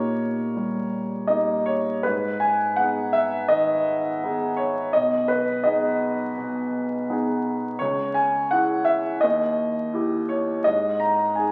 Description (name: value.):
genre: classical, romantic character piece for solo piano.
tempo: 83 BPM.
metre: 4/4.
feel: rubato.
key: G# minor.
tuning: A4 = 442 Hz.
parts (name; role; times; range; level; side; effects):
clear baby grand piano; solo; 0.0-11.5 s; B1 to A#5; -23 LUFS; equal; none.
room: wet recital hall reverb, RT60 1.4 s.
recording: very old 78 rpm record, vinyl crackle.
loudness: -23 LUFS.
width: mono.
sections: 0.0-11.5 A section.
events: none.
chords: 0.0 D#7/A#; 2.0 G#m; 4.9 G#m/B; 7.8 C#madd11; 9.2 D#; 10.7 G#5.